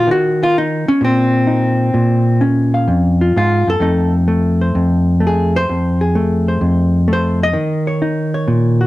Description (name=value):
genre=solo jazz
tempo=129 BPM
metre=4/4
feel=swing 68% on 8ths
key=unclear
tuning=A4 = 440 Hz
part: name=hollow-body jazz guitar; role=solo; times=0.0-8.9 s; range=F2 to F5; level=-12 LUFS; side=equal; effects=none
room=light reverb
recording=dark, warm production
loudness=-12 LUFS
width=side -17 dB against mid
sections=0.0-8.9 A section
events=hollow-body jazz guitar solo 0.0-8.9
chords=0.0 Ebm; 1.9 Bbm7; 3.8 F7#9; 7.5 Eb7(no3)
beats=| 0.08 0.54 1.01 1.48 | 1.95 2.41 2.88 3.35 | 3.81 4.28 4.75 5.21 | 5.68 6.15 6.61 7.08 | 7.54 8.01 8.48